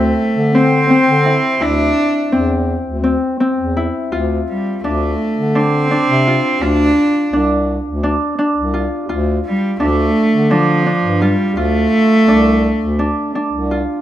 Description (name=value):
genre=contemporary instrumental, chamber music in an uneven meter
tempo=169 BPM (eighths)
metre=7/8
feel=straight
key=D minor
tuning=A4 = 441 Hz
part: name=rich cello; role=melody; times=0.0-13.3 s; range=F3 to D4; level=-15 LUFS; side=right 1 dB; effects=none
part: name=Celtic harp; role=arpeggios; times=0.0-14.0 s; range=C4 to F4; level=-18 LUFS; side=left 1 dB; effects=none
part: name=mellow bass clarinet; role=bass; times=0.0-13.8 s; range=C2 to D3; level=-19 LUFS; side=equal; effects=none
room=light reverb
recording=close, detailed microphones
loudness=-13 LUFS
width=side -12 dB against mid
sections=0.0-14.0 A section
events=none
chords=0.0 D7sus2; 4.1 Dm7; 9.1 Dmadd11; 11.6 Dm7